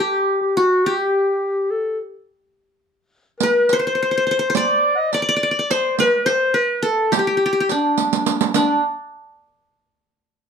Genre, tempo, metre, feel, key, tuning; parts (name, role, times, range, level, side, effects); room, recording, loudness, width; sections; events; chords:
Turkish makam ensemble; 210 BPM (eighths); 9/8; straight; D makam hicaz; A4 = 440 Hz
qanun; melody; 0.0-8.8 s; D4 to D5; -19 LUFS; equal
mellow clarinet; second line; 0.0-8.8 s; D4 to F#5; -21 LUFS; left 2 dB
riq; percussion; 3.4-8.8 s; -22 LUFS; right 11 dB
moderate studio reverb, RT60 0.6 s; -16 LUFS; side -6 dB against mid
0.0-8.6 A section; 8.6-10.5 B section
drum fill 8.0-8.6